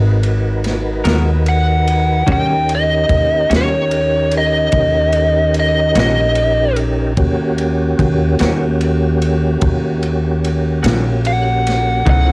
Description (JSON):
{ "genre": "slow blues", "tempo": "49 BPM (dotted quarters)", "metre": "12/8", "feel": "straight", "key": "unclear", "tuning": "A4 = 440 Hz", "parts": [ { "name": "tonewheel organ", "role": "sustained chords", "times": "0.0-12.3 s", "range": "E#3 to B#4", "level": "-20 LUFS", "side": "equal", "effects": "slow rotary speaker, chorus vibrato, cassette tape" }, { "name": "upright bass", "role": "bass", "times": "0.0-12.3 s", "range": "G#1 to D#2", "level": "-16 LUFS", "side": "equal", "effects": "none" }, { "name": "crunchy breakbeat drum kit", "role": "drums", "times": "0.2-12.3 s", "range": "kick drum, ride cymbal, snare drum", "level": "-21 LUFS", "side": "equal", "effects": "cassette tape" }, { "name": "semi-hollow electric guitar", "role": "accompaniment", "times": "1.0-12.3 s", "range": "C#3 to A#4", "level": "-20 LUFS", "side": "left 1 dB", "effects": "tremolo, cassette tape" }, { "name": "biting lead guitar", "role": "melody", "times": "1.5-12.3 s", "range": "C#5 to G5", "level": "-15 LUFS", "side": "equal", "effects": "overdrive, cassette tape" } ], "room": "little or no reverb", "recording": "home recording on cassette", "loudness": "-12 LUFS", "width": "side -27 dB against mid", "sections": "0.0-12.3 A section", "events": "lead electric guitar solo 0.0-12.3", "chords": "0.0 G#m9; 2.3 D#7#9" }